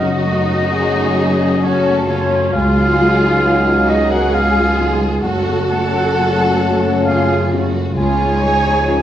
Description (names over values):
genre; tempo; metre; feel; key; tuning
cinematic, emotional film score for orchestra; 66 BPM; 3/4; rubato; unclear; A4 = 440 Hz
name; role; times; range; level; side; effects
warm symphonic violin section; melody; 0.0-9.0 s; Db4 to A4; -24 LUFS; equal; none
concert flute; second line; 0.0-9.0 s; Db5 to Ab5; -24 LUFS; left 1 dB; none
mellow clarinet; second line; 0.0-9.0 s; Db5 to Ab5; -20 LUFS; equal; none
warm symphonic violin section; second line; 0.0-9.0 s; F4 to Db5; -23 LUFS; equal; none
felt-muted upright piano; accompaniment; 0.0-9.0 s; Db2 to A4; -22 LUFS; left 2 dB; none
warm symphonic viola section; accompaniment; 0.0-9.0 s; Db4 to Ab4; -23 LUFS; right 1 dB; none
mellow French horn section; sustained chords; 0.0-9.0 s; F3 to Eb4; -22 LUFS; left 3 dB; none
rich symphonic cello section; bass; 0.0-9.0 s; Db2 to Gb2; -22 LUFS; right 1 dB; none
rich symphonic double bass section; bass; 0.0-9.0 s; Gb1 to Db2; -21 LUFS; right 2 dB; none
room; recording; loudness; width
wet recital hall reverb, RT60 1.8 s; worn, warbling old tape, cassette tape, warbly pitch drift; -13 LUFS; side -11 dB against mid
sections
0.0-9.0 A section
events
none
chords
0.0 Gbmadd9; 2.5 Dbadd9; 5.2 Gbmadd9; 8.0 Dbadd9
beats
0.72 1.64 | 2.54 3.44 4.34 | 5.23 6.15 7.06 | 7.97 8.88